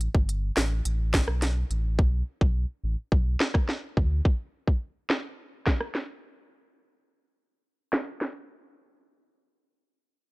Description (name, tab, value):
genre	dancehall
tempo	106 BPM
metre	4/4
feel	straight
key	unclear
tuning	A4 = 440 Hz
part	sub bass with octave	bass	0.0-4.2 s	G1 to D2	-26 LUFS	equal	none
part	island pop drum kit	drums	0.0-8.3 s	hi-hat, kick drum, rim click, snare drum	-24 LUFS	equal	none
room	little or no reverb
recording	dry, gritty hardware recording, low-pass filter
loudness	-25 LUFS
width	side -24 dB against mid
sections	0.0-8.8 A section; 8.8-10.3 B section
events	none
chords	none